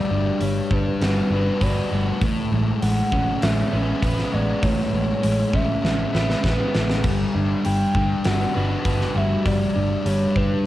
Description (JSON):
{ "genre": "rock, shoegaze and dream pop", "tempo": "99 BPM", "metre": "4/4", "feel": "straight", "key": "unclear", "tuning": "A4 = 442 Hz", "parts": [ { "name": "gliding portamento lead", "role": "melody", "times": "0.0-10.6 s", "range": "B4 to G5", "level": "-28 LUFS", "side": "equal", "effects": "chorus, tape echo" }, { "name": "overdriven semi-hollow guitar", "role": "riff", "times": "0.0-10.7 s", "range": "A2 to B4", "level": "-27 LUFS", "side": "right 6 dB", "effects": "reverse reverb, cassette tape" }, { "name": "thick fuzz guitar", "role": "riff", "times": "0.0-10.7 s", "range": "A2 to B4", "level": "-24 LUFS", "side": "left 4 dB", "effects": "distortion, wide subtle chorus, cassette tape" }, { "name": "vintage muted picked electric bass", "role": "bass", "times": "0.1-10.5 s", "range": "G1 to A1", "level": "-24 LUFS", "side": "equal", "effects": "none" }, { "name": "huge arena drum kit", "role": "drums", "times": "0.4-10.5 s", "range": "hi-hat, kick drum, snare drum, splash cymbal", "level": "-26 LUFS", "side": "equal", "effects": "none" } ], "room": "light reverb, small room reverb", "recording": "home recording on cassette", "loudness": "-19 LUFS", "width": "side -14 dB against mid", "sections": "0.0-10.7 A section", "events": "drum fill 5.8-7.0", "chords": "0.0 Gmaj7; 2.2 Amaj9; 7.0 Gmaj7" }